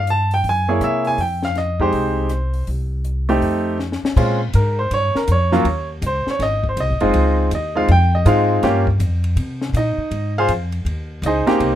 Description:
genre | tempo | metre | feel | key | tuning
jazz piano trio | 161 BPM | 4/4 | swing 64% on 8ths | F minor | A4 = 439 Hz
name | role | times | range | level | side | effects
clear baby grand piano | melody | 0.0-11.8 s | Gb3 to A5 | -18 LUFS | right 1 dB | none
upright bass | bass | 0.0-11.8 s | Gb1 to C3 | -19 LUFS | equal | none
compact cocktail drum kit | drums | 0.1-11.7 s | crash cymbal, hi-hat, kick drum, ride cymbal, rim click, snare drum | -28 LUFS | left 3 dB | none
room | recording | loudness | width
little or no reverb | minimal, uncompressed stereo recording | -16 LUFS | side -11 dB against mid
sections
0.0-4.2 A section; 4.2-11.8 B section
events
drum fill 3.8-4.2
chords
0.4 Gb9; 1.2 Fm9; 2.7 N.C.; 3.4 F7; 4.2 Bbm7; 5.7 Dbsus2; 6.4 Ab7; 7.1 Dbmaj7; 8.6 Gm7b5; 9.4 Bbsus24; 10.1 Fm7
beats
0.07 0.44 0.81 | 1.19 1.56 1.93 2.30 | 2.67 3.05 3.42 3.79 | 4.16 4.54 4.91 5.28 | 5.65 6.02 6.40 6.77 | 7.14 7.51 7.88 8.26 | 8.63 9.00 9.37 9.74 | 10.12 10.49 10.86 11.23 | 11.60

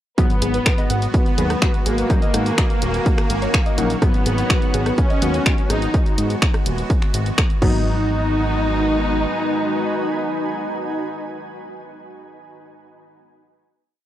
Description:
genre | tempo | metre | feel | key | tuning
melodic techno | 125 BPM | 4/4 | straight | G# minor | A4 = 440 Hz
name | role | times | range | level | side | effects
soft supersaw | melody | 0.2-11.2 s | A#3 to D#4 | -24 LUFS | equal | sidechain pumping, tape echo
warm symphonic violin section | second line | 0.2-11.2 s | A#3 to D#4 | -31 LUFS | equal | sidechain pumping, tape echo
evolving wavetable pad | sustained chords | 1.0-11.2 s | D#3 to F#4 | -29 LUFS | right 1 dB | ensemble chorus, built-in reverb, sidechain pumping
soft round pluck | arpeggios | 0.2-8.1 s | F#4 to F#5 | -30 LUFS | right 1 dB | chorus, sidechain pumping, tape echo
synth brass stab | stabs | 0.2-11.2 s | G#2 to D#4 | -29 LUFS | left 2 dB | chorus, sidechain pumping, tape echo
electronic kick drum | drums | 0.2-7.7 s | none | -18 LUFS | equal | overdrive
techno drum kit | drums | 0.2-7.7 s | crash cymbal, finger snaps, hi-hat, rim click | -23 LUFS | equal | overdrive
granular cloud pad | texture | 1.0-11.5 s | D#4 to G#5 | -31 LUFS | equal | built-in reverb, sidechain pumping
fat analog bass | bass | 0.4-9.3 s | D#1 to G#2 | -22 LUFS | equal | sidechain pumping
room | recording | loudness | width
digital ambience | dry, gritty hardware recording, transformer saturation, cassette tape | -17 LUFS | side -12 dB against mid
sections
0.2-7.9 drop; 7.9-11.7 final note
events
drop 0.2-7.9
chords
0.2 G#m7; 2.1 D#m7; 4.0 G#m7; 5.9 Eadd9; 7.6 G#m7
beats
| 0.18 0.66 1.14 1.62 | 2.10 2.58 3.06 3.54 | 4.02 4.50 4.98 5.46 | 5.94 6.42 6.90 7.38 | 7.86 8.34 8.82 9.30 | 9.78 10.26 10.74 11.22

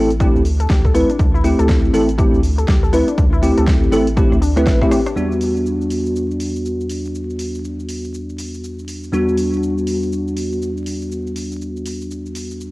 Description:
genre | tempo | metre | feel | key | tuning
deep house | 121 BPM | 4/4 | swing 60% on 16ths | E minor | A4 = 440 Hz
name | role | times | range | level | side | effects
bell-like tine electric piano | stabs | 0.0-12.7 s | E2 to B4 | -18 LUFS | equal | ensemble chorus, sidechain pumping, analog delay
round analog bass | bass | 0.0-4.8 s | A1 to D2 | -19 LUFS | equal | sidechain pumping
deep house drum kit | drums | 0.1-12.7 s | hi-hat, rim click, shaker, snare drum | -29 LUFS | equal | overdrive, studio reverb, cassette tape
warbly dusty pluck | arpeggios | 0.2-5.1 s | D4 to E5 | -25 LUFS | left 4 dB | chorus, sidechain pumping, analog delay
electronic kick drum | drums | 0.2-4.9 s | none | -16 LUFS | equal | studio reverb, cassette tape
room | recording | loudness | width
light reverb | home recording on cassette, vinyl crackle | -15 LUFS | side -20 dB against mid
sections
0.0-5.2 A section; 5.2-12.7 B section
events
drum fill 4.2-5.2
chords
0.0 D9sus4; 5.2 Em9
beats
0.20 0.70 | 1.19 1.69 2.19 2.68 | 3.18 3.67 4.17 4.67 | 5.16 5.66 6.15 6.65 | 7.14 7.64 8.14 8.63 | 9.13 9.62 10.12 10.62 | 11.11 11.61 12.10 12.60

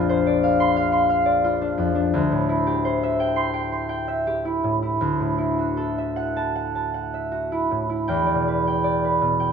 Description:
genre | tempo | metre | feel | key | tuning
classical, solo harp piece | 77-88 BPM | 4/4 | rubato | unclear | A4 = 440 Hz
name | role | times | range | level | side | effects
concert harp | solo | 0.0-9.5 s | A#1 to B#5 | -20 LUFS | equal | none
room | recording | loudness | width
wet stone room reverb, RT60 1.3 s | minimal, uncompressed stereo recording | -20 LUFS | side -6 dB against mid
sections
0.0-8.1 A section; 8.1-9.5 B section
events
none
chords
0.0 A#add9; 2.1 D9sus4; 5.0 Dadd9; 8.1 Em7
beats
0.08 0.77 1.45 | 2.14 2.84 3.54 4.26 | 5.02 5.80 6.58 7.34 | 8.09 8.83

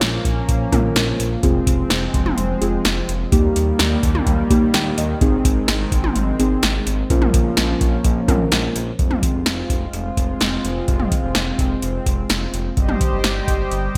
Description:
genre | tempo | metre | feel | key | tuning
synth-pop | 127 BPM | 4/4 | straight | F minor | A4 = 437 Hz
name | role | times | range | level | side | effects
muted felt-like synth keys | accompaniment | 0.0-8.8 s | Bb3 to G5 | -25 LUFS | equal | chorus
chorused pulse-width pad | sustained chords | 0.0-14.0 s | Eb3 to G5 | -26 LUFS | equal | none
smooth synth bass | bass | 0.0-14.0 s | F1 to Eb2 | -26 LUFS | equal | none
electro analog drum machine | drums | 0.0-14.0 s | hi-hat, kick drum, snare drum, toms | -21 LUFS | equal | overdrive, gated reverb
room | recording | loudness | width
moderate plate reverb, RT60 1.7 s | bright 1980s-style digital production | -19 LUFS | mono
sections
0.0-9.0 A section; 9.0-14.0 B section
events
synth keys fill 4.5-5.2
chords
0.0 Bbm; 1.4 Fm; 3.3 Eb; 5.2 Ab; 7.1 Bbm; 9.0 Fm; 12.8 Cm/G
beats
0.01 0.49 0.96 | 1.43 1.90 2.38 2.85 | 3.32 3.79 4.27 4.74 | 5.21 5.68 6.16 6.63 | 7.10 7.57 8.05 8.52 | 8.99 9.46 9.94 10.41 | 10.88 11.35 11.82 12.30 | 12.77 13.24 13.71

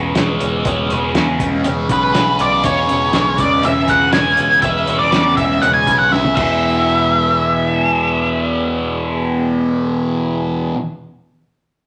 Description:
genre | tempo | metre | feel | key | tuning
psychedelic rock | 121 BPM | 4/4 | straight | E major | A4 = 440 Hz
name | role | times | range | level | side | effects
overdriven combo organ | sustained chords | 0.0-10.7 s | C#3 to B4 | -28 LUFS | equal | none
fuzz guitar | riff | 0.0-10.8 s | E2 to C#4 | -20 LUFS | equal | distortion, phaser
picked electric bass | bass | 0.0-10.7 s | E1 to E2 | -27 LUFS | equal | none
cloth-damped thuddy drum kit | drums | 0.2-6.5 s | crash cymbal, hi-hat, kick drum, snare drum, toms | -24 LUFS | equal | none
octave-fuzz lead guitar | melody | 1.9-10.7 s | B4 to G#5 | -18 LUFS | equal | distortion
room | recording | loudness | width
wet large studio reverb, RT60 0.8 s | none | -16 LUFS | mono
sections
0.0-6.6 A section; 6.6-10.6 B section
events
drum fill 6.1-6.6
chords
0.0 C#m7/E; 6.4 E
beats
0.16 | 0.66 1.15 1.65 2.15 | 2.64 3.14 3.63 4.13 | 4.63 5.12 5.62 6.12 | 6.62 7.11 7.61 8.11 | 8.60 9.10 9.59 10.09

